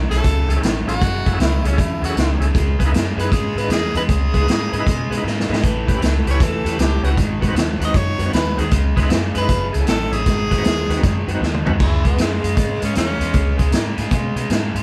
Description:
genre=electric blues shuffle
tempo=156 BPM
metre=4/4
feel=swing 65% on 8ths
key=C# minor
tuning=A4 = 441 Hz
part: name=cranked stack guitar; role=riff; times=0.0-14.8 s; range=F#2 to A#3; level=-27 LUFS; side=equal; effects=overdrive
part: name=vintage muted fingered electric bass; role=bass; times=0.0-14.8 s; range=F#1 to B2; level=-23 LUFS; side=equal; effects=none
part: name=bright tenor saxophone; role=melody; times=0.1-13.7 s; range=G#3 to D#5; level=-27 LUFS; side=equal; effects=none
part: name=overdriven tonewheel organ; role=accompaniment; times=0.1-11.7 s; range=B#3 to B4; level=-30 LUFS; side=equal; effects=slow rotary speaker
part: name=vintage drum kit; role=drums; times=0.1-14.8 s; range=crash cymbal, hi-hat, kick drum, snare drum, toms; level=-22 LUFS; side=equal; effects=none
room=moderate large studio reverb, RT60 0.9 s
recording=band playing live in one room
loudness=-18 LUFS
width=mono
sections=0.0-11.8 A section; 11.8-14.8 B section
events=drum fill 5.2-5.6, 11.4-11.8; tenor saxophone solo 11.8-14.8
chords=0.0 F#m7; 2.5 C#m7; 5.6 A7; 7.2 G#7#9; 8.7 C#m7; 9.5 F#m7; 10.3 G#7#9; 11.8 C#5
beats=0.24 0.62 | 1.01 1.39 1.78 2.16 | 2.55 2.93 3.32 3.70 | 4.09 4.47 4.86 5.24 | 5.63 6.01 6.40 6.79 | 7.17 7.55 7.94 8.33 | 8.71 9.10 9.48 9.87 | 10.25 10.64 11.03 11.41 | 11.80 12.18 12.57 12.95 | 13.34 13.72 14.11 14.50

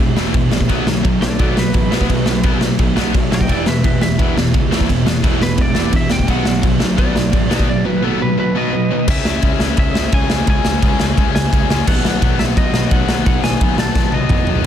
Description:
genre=punk rock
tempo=172 BPM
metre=4/4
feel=straight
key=unclear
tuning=A4 = 438 Hz
part: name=overdriven electric guitar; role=riff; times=0.0-9.1 s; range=E2 to B3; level=-21 LUFS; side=right 12 dB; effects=none
part: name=thick fuzz guitar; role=riff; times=0.0-14.7 s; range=B2 to E4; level=-24 LUFS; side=equal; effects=distortion
part: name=tight distorted guitar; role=riff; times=0.0-14.6 s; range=E2 to C#4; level=-22 LUFS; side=left 13 dB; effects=distortion
part: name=fuzz picked electric bass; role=bass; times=0.0-14.6 s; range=E1 to B2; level=-21 LUFS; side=equal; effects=overdrive
part: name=raw garage drum kit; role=drums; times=0.2-14.6 s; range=crash cymbal, kick drum, ride cymbal, snare drum, toms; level=-16 LUFS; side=equal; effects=none
part: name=lightly driven lead guitar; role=melody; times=1.2-14.7 s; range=A4 to A5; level=-24 LUFS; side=equal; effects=digital delay
room=little or no reverb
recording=dense, heavily limited modern master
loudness=-13 LUFS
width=side -10 dB against mid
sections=0.0-9.1 A section; 9.1-14.7 B section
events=lead electric guitar solo 0.0-9.1; drum fill 14.0-14.7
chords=0.0 E; 0.7 B; 3.5 E; 6.3 B; 9.1 C#m; 11.9 B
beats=0.34 | 0.69 1.04 1.39 1.74 | 2.09 2.44 2.79 3.14 | 3.49 3.84 4.19 4.54 | 4.89 5.24 5.59 5.94 | 6.29 6.64 6.99 7.34 | 7.69 8.04 8.39 8.73 | 9.09 9.43 9.78 10.13 | 10.48 10.83 11.18 11.53 | 11.87 12.22 12.57 12.92 | 13.26 13.61 13.96 14.30 | 14.65

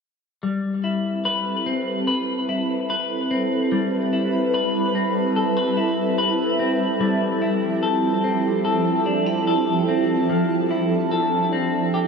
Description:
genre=dream pop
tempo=73 BPM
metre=4/4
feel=straight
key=A minor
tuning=A4 = 441 Hz
part: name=shimmering ambient pad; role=sustained chords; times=1.2-12.1 s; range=F3 to B4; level=-22 LUFS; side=right 2 dB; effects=chorus, built-in reverb, phaser
part: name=semi-hollow electric guitar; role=arpeggios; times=0.4-12.1 s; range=F3 to B4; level=-23 LUFS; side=left 2 dB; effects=wide subtle chorus, ping-pong delay
room=wet huge ambient reverb, RT60 8.5 s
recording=dreamy mix soaked in reverb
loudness=-19 LUFS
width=side -5 dB against mid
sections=0.4-12.1 A section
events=none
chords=0.4 Am9; 7.0 Fmaj9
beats=| 0.43 1.25 2.08 2.90 | 3.72 4.54 5.36 6.18 | 7.01 7.83 8.65 9.47 | 10.29 11.12 11.94

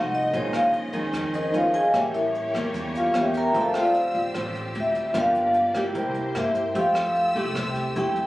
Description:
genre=bossa nova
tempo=150 BPM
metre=4/4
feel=straight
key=F major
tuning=A4 = 438 Hz
part: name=vibraphone with medium mallets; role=melody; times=0.0-8.3 s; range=Eb4 to Bb5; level=-22 LUFS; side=equal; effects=none
part: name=bright tine electric piano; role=accompaniment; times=0.0-8.3 s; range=Eb4 to E6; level=-34 LUFS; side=right 1 dB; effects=none
part: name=nylon-string guitar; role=accompaniment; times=0.0-8.3 s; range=F2 to G4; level=-30 LUFS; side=left 1 dB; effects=none
part: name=warm studio string section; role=sustained chords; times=0.0-8.3 s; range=A3 to E6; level=-35 LUFS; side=equal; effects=none
part: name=upright bass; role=bass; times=0.0-8.3 s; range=G1 to G2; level=-32 LUFS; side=right 1 dB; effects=none
part: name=jazz brush drum kit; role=drums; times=0.1-8.2 s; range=hi-hat, kick drum, rim click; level=-38 LUFS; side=right 1 dB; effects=none
room=light reverb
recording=recorded on a phone in the room, club reverb, compression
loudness=-21 LUFS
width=side -17 dB against mid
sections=0.0-8.3 A section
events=vibraphone solo 0.0-8.3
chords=0.3 Bbm11; 1.9 A7b9; 3.5 Dm11; 5.2 Gm7; 6.0 C7; 6.8 Fmaj9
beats=| 0.34 0.74 1.14 1.54 | 1.94 2.35 2.75 3.15 | 3.55 3.95 4.35 4.75 | 5.15 5.55 5.95 6.35 | 6.75 7.16 7.55 7.96

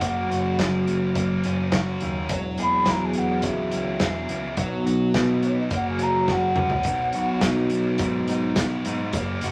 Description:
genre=indie rock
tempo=105 BPM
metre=4/4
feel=straight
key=unclear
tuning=A4 = 440 Hz
part: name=alto ocarina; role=melody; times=0.0-7.4 s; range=C#5 to B5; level=-28 LUFS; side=equal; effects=none
part: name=sludgy distorted guitar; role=riff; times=0.0-9.5 s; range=D#3 to G#4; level=-32 LUFS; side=equal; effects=overdrive
part: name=twelve-string electric guitar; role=riff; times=0.0-9.5 s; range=F#2 to G#4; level=-27 LUFS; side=equal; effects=none
part: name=growling picked electric bass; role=bass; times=0.0-9.5 s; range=E1 to B2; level=-34 LUFS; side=equal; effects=overdrive
part: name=loose indie drum kit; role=drums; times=0.0-9.5 s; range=hi-hat, kick drum, snare drum, toms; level=-30 LUFS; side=equal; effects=none
part: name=tube shaker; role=percussion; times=6.9-9.5 s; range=none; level=-48 LUFS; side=equal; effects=none
room=moderate studio reverb, RT60 0.6 s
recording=vinyl crackle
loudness=-24 LUFS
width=mono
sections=0.0-9.5 A section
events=ocarina solo 0.0-9.5; drum fill 6.3-6.9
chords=0.0 F#; 2.3 Eadd9; 4.6 B; 5.7 F#; 6.9 B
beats=| 0.02 0.59 1.16 1.73 | 2.30 2.87 3.44 4.01 | 4.58 5.15 5.72 6.29 | 6.87 7.43 8.01 8.58 | 9.15

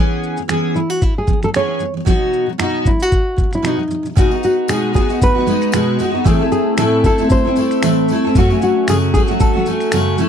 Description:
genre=acoustic pop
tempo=114 BPM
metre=4/4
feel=swing 55% on 16ths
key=unclear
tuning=A4 = 440 Hz
part: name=picked steel-string acoustic guitar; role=accompaniment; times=0.0-10.3 s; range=F#2 to A4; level=-16 LUFS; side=equal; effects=double-tracked left and right
part: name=dusty soul sampler-style drum kit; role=drums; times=0.2-10.3 s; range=finger snaps, kick drum, shaker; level=-17 LUFS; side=equal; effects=none
part: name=nylon-string guitar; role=melody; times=0.8-10.1 s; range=D#4 to C#5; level=-19 LUFS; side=left 1 dB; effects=slapback echo
part: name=tambourine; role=percussion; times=4.2-10.3 s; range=none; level=-35 LUFS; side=left 26 dB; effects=none
room=little or no reverb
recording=dry, close 1970s-style studio recording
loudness=-13 LUFS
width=side -8 dB against mid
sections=0.0-4.2 A section; 4.2-10.3 B section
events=none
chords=0.0 E6; 2.1 B; 4.2 B6; 6.3 Am; 8.4 F#m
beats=0.49 1.01 1.54 | 2.06 2.59 3.11 3.64 | 4.16 4.68 5.21 5.73 | 6.26 6.78 7.30 7.83 | 8.35 8.88 9.40 9.93

